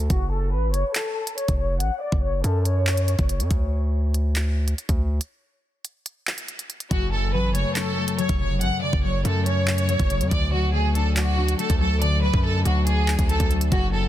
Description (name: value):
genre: hip hop, drill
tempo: 141 BPM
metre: 4/4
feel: half-time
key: F# minor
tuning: A4 = 441 Hz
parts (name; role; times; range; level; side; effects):
- distorted 808-style bass; bass; 0.0-14.1 s; E#1 to F#2; -22 LUFS; equal; distortion
- rich studio violin section; melody; 0.1-3.5, 6.9-14.1 s; F#4 to F#5; -27 LUFS; equal; low-pass filter, tape echo
- drill drum kit; drums; 0.1-13.8 s; handclaps, hi-hat, kick drum; -25 LUFS; equal; none
- concert harp; accompaniment; 6.9-14.1 s; F#2 to D5; -27 LUFS; left 3 dB; low-pass filter
room: small room ambience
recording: dense, heavily limited modern master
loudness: -20 LUFS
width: side -12 dB against mid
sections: 0.0-14.1 A section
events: break 3.5-6.9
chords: 0.1 F#m; 3.5 N.C.; 6.9 F#m; 10.3 D